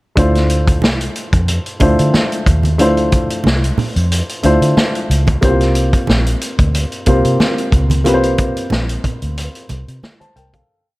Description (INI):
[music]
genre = lush 1970s-style soul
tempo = 91 BPM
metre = 4/4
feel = swing 54% on 16ths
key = D minor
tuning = A4 = 440 Hz
[part]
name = dark baby grand piano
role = accompaniment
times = 0.2-10.9 s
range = A3 to A5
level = -17 LUFS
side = equal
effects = none
[part]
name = vintage muted fingered electric bass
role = bass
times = 0.2-10.6 s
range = Bb1 to D3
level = -16 LUFS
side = equal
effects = none
[part]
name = vintage drum kit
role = drums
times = 0.2-10.7 s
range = hi-hat, kick drum, snare drum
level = -17 LUFS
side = equal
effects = none
[part]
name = congas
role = percussion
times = 0.2-10.7 s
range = none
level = -22 LUFS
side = right 3 dB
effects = none
[sound]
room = light reverb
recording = none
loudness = -12 LUFS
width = side -20 dB against mid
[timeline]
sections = 0.2-10.7 verse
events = fade-out 8.1-10.7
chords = 0.2 Dm9; 5.4 C7sus4